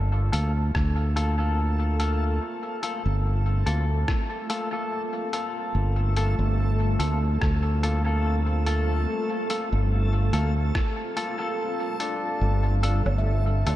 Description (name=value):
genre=ambient dub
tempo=72 BPM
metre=4/4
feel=swing 55% on 16ths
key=G minor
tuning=A4 = 439 Hz
part: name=granular cloud pad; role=sustained chords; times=0.0-13.8 s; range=G3 to A4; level=-37 LUFS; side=right 1 dB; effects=built-in reverb
part: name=fingered electric bass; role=bass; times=0.0-13.8 s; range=G1 to D2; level=-22 LUFS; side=equal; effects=tube saturation
part: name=backwards swelling texture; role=texture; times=0.2-13.8 s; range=A3 to A4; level=-34 LUFS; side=equal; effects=built-in reverb
part: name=clean electric guitar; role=stabs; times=0.3-13.8 s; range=Bb3 to A4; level=-30 LUFS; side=left 2 dB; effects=vintage 12-bit sampler grit, dub echo
part: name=lo-fi sampler-style drum kit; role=drums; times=0.3-13.8 s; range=hi-hat, rim click, woodblock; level=-35 LUFS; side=left 1 dB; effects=dub echo
part: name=electronic kick drum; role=drums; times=0.7-10.9 s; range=none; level=-26 LUFS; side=equal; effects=none
part: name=handpan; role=arpeggios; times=13.2-13.8 s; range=E5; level=-40 LUFS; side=left 1 dB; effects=tape echo
room=light reverb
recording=none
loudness=-23 LUFS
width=side -14 dB against mid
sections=0.0-13.8 A section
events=fade-in on ambient pad 0.0-13.8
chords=0.0 Gm9; 12.4 G7sus2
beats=0.75 1.58 | 2.42 3.25 4.08 4.92 | 5.75 6.58 7.42 8.25 | 9.08 9.91 10.75 11.58 | 12.41 13.25